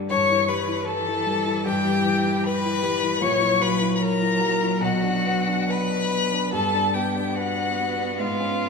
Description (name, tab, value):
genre	classical, slow romantic movement for piano quartet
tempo	66-79 BPM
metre	4/4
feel	rubato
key	unclear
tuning	A4 = 439 Hz
part	clear cello	second line	0.0-8.7 s	E3 to B3	-29 LUFS	right 3 dB	none
part	dark concert grand piano	accompaniment	0.0-8.7 s	A#1 to C#5	-26 LUFS	left 2 dB	none
part	clear violin	melody	0.1-8.7 s	E#5 to C#6	-25 LUFS	left 4 dB	none
part	rich violin	second line	0.1-8.7 s	E#4 to C#5	-26 LUFS	left 3 dB	none
room	wet concert hall reverb, RT60 2.0 s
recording	small room ambience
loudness	-20 LUFS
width	side -4 dB against mid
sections	0.0-8.7 A section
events	none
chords	0.1 Em/G; 3.2 F#7/A#; 4.8 Bm; 6.5 G